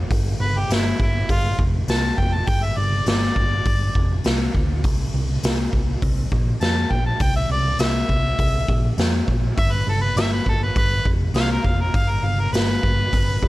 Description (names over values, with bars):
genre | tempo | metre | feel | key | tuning
blues rock power trio and southern rock | 101 BPM | 4/4 | straight | G mixolydian | A4 = 440 Hz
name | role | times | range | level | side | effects
hollow-body short-scale picked electric bass | bass | 0.0-13.5 s | F1 to F2 | -22 LUFS | equal | none
raw garage drum kit | drums | 0.1-13.5 s | hi-hat, kick drum, snare drum | -21 LUFS | equal | none
warm harmonica | melody | 0.4-13.5 s | E4 to A5 | -25 LUFS | equal | overdrive
room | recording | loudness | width
little or no reverb | none | -18 LUFS | side -17 dB against mid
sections
0.0-13.5 A section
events
harmonica solo 0.0-13.5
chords
0.0 G5; 4.8 C7; 9.6 G7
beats
| 0.10 0.69 1.28 1.88 | 2.47 3.06 3.65 4.25 | 4.84 5.43 6.02 6.61 | 7.21 7.80 8.39 8.98 | 9.57 10.17 10.76 11.35 | 11.94 12.54 13.13